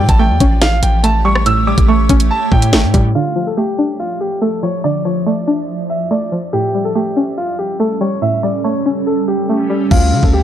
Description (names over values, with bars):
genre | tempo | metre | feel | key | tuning
hip hop, drill | 142 BPM | 4/4 | half-time | D harmonic minor | A4 = 441 Hz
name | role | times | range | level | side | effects
clear concert grand piano | melody | 0.0-10.4 s | F4 to E6 | -19 LUFS | left 1 dB | low-pass filter
string-like resonator pluck | accompaniment | 0.0-9.9 s | A2 to D4 | -17 LUFS | right 1 dB | chorus, low-pass filter
granular cloud pad | sustained chords | 0.0-10.4 s | F3 to E5 | -21 LUFS | right 2 dB | built-in reverb
hard-hitting 808-style bass | bass | 0.0-3.1, 9.9-10.4 s | G1 to D3 | -14 LUFS | equal | none
drill drum kit | drums | 0.1-3.0, 9.9-10.3 s | crash cymbal, hi-hat, kick drum, rim click, snare drum | -13 LUFS | equal | none
room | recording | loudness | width
little or no reverb | dry, gritty hardware recording, transformer saturation, low-pass filter | -12 LUFS | side -10 dB against mid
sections
0.0-3.2 A section; 3.2-9.9 B section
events
filter sweep 3.2-9.9; hi-hats muted 9.9-10.4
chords
0.0 A7; 3.2 Dmadd9; 6.5 A7; 9.9 Dmadd9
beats
0.19 0.61 1.04 | 1.46 1.88 2.31 2.73 | 3.15 3.57 4.00 4.42 | 4.84 5.26 5.69 6.11 | 6.53 6.95 7.38 7.80 | 8.22 8.64 9.07 9.49 | 9.91 10.33